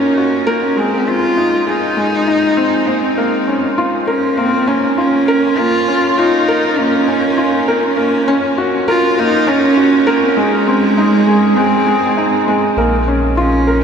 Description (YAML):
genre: piano and strings electronica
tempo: 100 BPM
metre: 4/4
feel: straight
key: Bb minor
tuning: A4 = 440 Hz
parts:
  - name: dark cello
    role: melody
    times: 0.0-13.8 s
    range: Ab3 to F4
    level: -14 LUFS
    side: right 1 dB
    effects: diffuse ambient delay
  - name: felt-muted upright piano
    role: riff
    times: 0.0-13.8 s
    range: Ab3 to C5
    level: -15 LUFS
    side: equal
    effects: diffuse ambient delay
  - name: warm sub bass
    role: bass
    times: 12.8-13.8 s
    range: Bb1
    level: -17 LUFS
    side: equal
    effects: none
room: wet huge ambient reverb, RT60 7.8 s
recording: dreamy mix soaked in reverb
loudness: -11 LUFS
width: side -7 dB against mid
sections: 0.0-12.8 A section; 12.8-13.8 B section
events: build-up 0.0-12.8; drop 12.8-13.8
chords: 0.0 Gb; 0.8 Ab; 3.2 Bbm; 8.0 Gb; 10.4 Ab; 12.8 Bbm